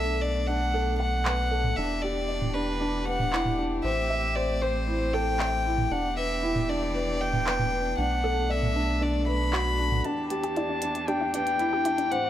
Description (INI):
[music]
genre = piano and strings electronica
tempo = 116 BPM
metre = 4/4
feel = straight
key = E minor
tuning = A4 = 440 Hz
[part]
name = rich violin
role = melody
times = 0.0-12.3 s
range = B4 to B5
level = -29 LUFS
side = left 1 dB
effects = low-pass filter
[part]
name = muted string quartet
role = sustained chords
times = 0.0-12.3 s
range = E2 to G4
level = -36 LUFS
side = equal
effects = low-pass filter
[part]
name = felt-muted upright piano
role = riff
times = 0.0-12.3 s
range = D4 to F#5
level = -30 LUFS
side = equal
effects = none
[part]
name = round analog bass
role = bass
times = 0.0-10.0 s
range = E1 to B1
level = -30 LUFS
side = equal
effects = none
[part]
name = minimal click drum kit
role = drums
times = 1.3-12.2 s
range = handclaps, hi-hat, toms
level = -31 LUFS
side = right 2 dB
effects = overdrive
[part]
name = analog pluck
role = arpeggios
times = 10.1-12.0 s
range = D4 to G4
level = -35 LUFS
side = left 1 dB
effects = chorus, digital delay
[sound]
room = moderate lush hall reverb, RT60 2.2 s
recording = none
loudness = -24 LUFS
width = side -11 dB against mid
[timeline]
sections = 0.0-10.0 A section; 10.0-12.3 B section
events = build-up 10.0-12.3; filter sweep on string quartet 10.0-12.3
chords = 0.0 Bm7; 1.8 Em7; 3.8 Am7; 5.9 Em7; 8.0 Bm7; 10.0 Em7